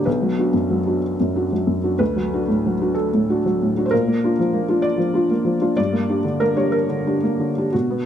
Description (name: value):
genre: neoclassical minimalist piano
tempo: 63 BPM (dotted quarters)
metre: 6/8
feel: uneven beats, rubato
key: unclear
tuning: A4 = 439 Hz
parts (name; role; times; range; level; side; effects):
- felt-muted upright piano; solo; 0.0-8.1 s; B1 to D5; -18 LUFS; equal; none
room: light reverb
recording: dark, warm production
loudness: -18 LUFS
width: side -9 dB against mid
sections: 0.0-8.1 A section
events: none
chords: 0.1 Bm; 2.0 D; 3.9 Bb; 5.8 Gm